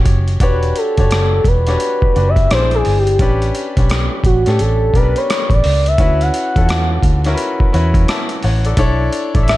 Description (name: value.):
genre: R&B, neo-soul.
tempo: 86 BPM.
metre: 4/4.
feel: swing 62% on 16ths.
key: D major.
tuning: A4 = 438 Hz.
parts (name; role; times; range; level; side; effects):
clear baby grand piano; accompaniment; 0.0-9.6 s; B3 to A5; -21 LUFS; left 3 dB; none.
vintage muted fingered electric bass; bass; 0.0-9.6 s; E1 to A2; -15 LUFS; equal; none.
boom bap sampler-style drum kit; drums; 0.1-9.6 s; hi-hat, kick drum, rim click; -17 LUFS; equal; none.
gliding portamento lead; melody; 0.4-9.6 s; F#4 to F#5; -17 LUFS; equal; chorus.
room: little or no reverb.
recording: dark, warm production.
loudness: -12 LUFS.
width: side -16 dB against mid.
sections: 0.4-9.6 A section.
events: soft synth lead solo 0.4-9.6.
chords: 0.4 Em9; 2.5 Bb9; 3.2 A9sus4; 6.0 Dmaj9; 8.8 Bm7.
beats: | 0.40 1.10 1.80 2.50 | 3.19 3.89 4.59 5.29 | 5.99 6.68 7.38 8.08 | 8.78 9.47.